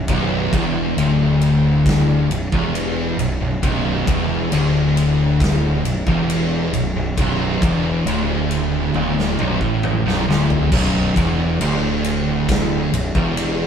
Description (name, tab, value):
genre	stoner and doom metal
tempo	68 BPM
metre	4/4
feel	straight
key	B minor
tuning	A4 = 440 Hz
part	distorted electric guitar	riff	0.0-13.7 s	B1 to A2	-24 LUFS	equal	overdrive
part	thick fuzz guitar	riff	0.0-13.7 s	B1 to A2	-22 LUFS	left 6 dB	distortion
part	thick fuzz guitar	riff	0.0-13.7 s	B1 to A2	-22 LUFS	right 4 dB	distortion
part	fuzz fingered electric bass	bass	0.0-13.7 s	B0 to A1	-24 LUFS	equal	overdrive
part	big rock drum kit	drums	0.1-13.6 s	crash cymbal, kick drum, ride cymbal, snare drum, toms	-23 LUFS	equal	none
room	light reverb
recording	band playing live in one room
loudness	-16 LUFS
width	side -8 dB against mid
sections	0.0-10.7 A section; 10.7-13.7 B section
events	drum fill 8.9-10.7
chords	0.0 Bm